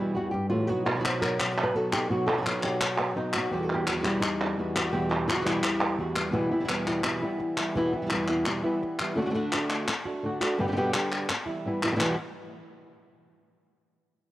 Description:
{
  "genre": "flamenco",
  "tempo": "170 BPM",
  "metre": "4/4",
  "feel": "straight",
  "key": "E harmonic minor, E minor from 6.3 s",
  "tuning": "A4 = 440 Hz",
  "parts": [
    { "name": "flamenco guitar", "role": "melody", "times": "0.0-12.2 s", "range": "E2 to C5", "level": "-28 LUFS", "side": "equal", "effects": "cassette tape" },
    { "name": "flamenco guitar", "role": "stabs", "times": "0.0-12.2 s", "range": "E2 to G4", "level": "-33 LUFS", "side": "right 2 dB", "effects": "cassette tape" },
    { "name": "palmas hand claps", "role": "percussion", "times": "0.9-12.1 s", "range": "none", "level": "-29 LUFS", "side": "equal", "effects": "none" }
  ],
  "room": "light reverb",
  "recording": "home recording on cassette",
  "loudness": "-25 LUFS",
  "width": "side -15 dB against mid",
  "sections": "0.0-6.3 A section; 6.3-12.0 B section; 12.0-13.4 C section",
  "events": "nylon-string guitar solo 0.0-6.3",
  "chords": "0.0 Emadd9; 0.7 B; 3.5 Emadd9; 6.3 Em; 9.2 D; 10.6 G; 11.3 Em"
}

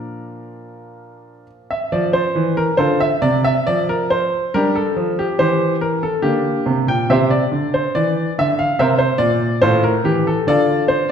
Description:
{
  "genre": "classical, baroque-style suite movement for grand piano",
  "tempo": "70 BPM",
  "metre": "3/4",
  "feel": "uneven beats, rubato",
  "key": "F major",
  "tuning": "A4 = 440 Hz",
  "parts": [
    { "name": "warm concert grand piano", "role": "solo", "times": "0.0-11.1 s", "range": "A2 to G5", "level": "-15 LUFS", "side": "equal", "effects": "none" }
  ],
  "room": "wet recital hall reverb, RT60 1.3 s",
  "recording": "dark, warm production",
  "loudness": "-15 LUFS",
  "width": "side -7 dB against mid",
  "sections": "0.0-1.9 A section; 1.9-11.1 A section",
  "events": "none",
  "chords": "0.0 Bb; 1.9 F5; 3.7 N.C.; 4.5 Gm; 7.1 C; 8.8 Bbadd9; 9.6 F/A"
}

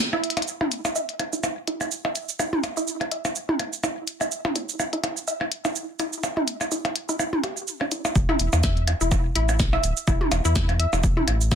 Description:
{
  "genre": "minimal techno",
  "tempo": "125 BPM",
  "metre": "4/4",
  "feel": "swing 56% on 16ths",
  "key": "unclear",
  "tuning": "A4 = 440 Hz",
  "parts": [
    { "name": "minimal click drum kit", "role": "drums", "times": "0.0-11.6 s", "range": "hi-hat, shaker, snare drum", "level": "-28 LUFS", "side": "right 1 dB", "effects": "none" },
    { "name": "resonant blip pluck", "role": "riff", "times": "0.1-11.6 s", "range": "D4 to E5", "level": "-30 LUFS", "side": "equal", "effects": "chorus, cassette tape, sidechain pumping, digital delay" },
    { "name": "electronic percussion blips, claves and toms", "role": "percussion", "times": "0.1-11.6 s", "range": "none", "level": "-26 LUFS", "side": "equal", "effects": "none" },
    { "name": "round analog bass", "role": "bass", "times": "8.2-11.6 s", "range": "D1 to E2", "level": "-23 LUFS", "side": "equal", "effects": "tube saturation, sidechain pumping" },
    { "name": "electronic kick drum", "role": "drums", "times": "8.2-11.6 s", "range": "none", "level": "-23 LUFS", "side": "equal", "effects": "overdrive" }
  ],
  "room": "light reverb",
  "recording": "dense, heavily limited modern master",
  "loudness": "-22 LUFS",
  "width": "side -8 dB against mid",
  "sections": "0.5-8.2 A section; 8.2-11.6 B section",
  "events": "break 0.0-0.5; band accent 0.0; drum fill 0.2; drop 8.2-11.6",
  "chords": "none"
}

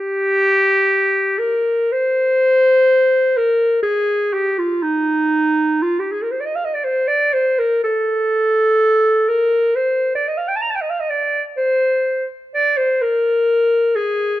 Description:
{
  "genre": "classical, free, expressive piece for unaccompanied clarinet",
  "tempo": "56-67 BPM",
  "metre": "4/4",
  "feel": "rubato",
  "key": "unclear",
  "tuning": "A4 = 437 Hz",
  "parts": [
    { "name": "mellow clarinet", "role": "solo", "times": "0.0-14.4 s", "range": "Eb4 to Bb5", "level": "-15 LUFS", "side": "equal", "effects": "none" }
  ],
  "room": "light reverb",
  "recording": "close, detailed microphones",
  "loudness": "-15 LUFS",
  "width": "side -14 dB against mid",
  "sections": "0.0-14.4 A section",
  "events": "none",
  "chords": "none"
}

